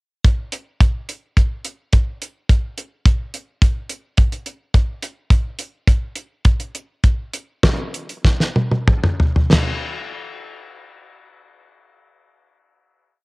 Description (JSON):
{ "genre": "pop", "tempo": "91-107 BPM", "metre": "4/4", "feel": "straight", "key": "none", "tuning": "none", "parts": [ { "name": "damped 70s drum kit", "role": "drums", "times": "0.2-9.7 s", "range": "crash cymbal, hi-hat, kick drum, snare drum, toms", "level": "-15 LUFS", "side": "equal", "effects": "cassette tape" } ], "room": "light reverb", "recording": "home recording on cassette", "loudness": "-17 LUFS", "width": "side -27 dB against mid", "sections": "0.2-9.5 verse; 9.5-12.2 final hit", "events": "slowing down 4.7-9.5; drum fill 8.2-9.5", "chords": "none" }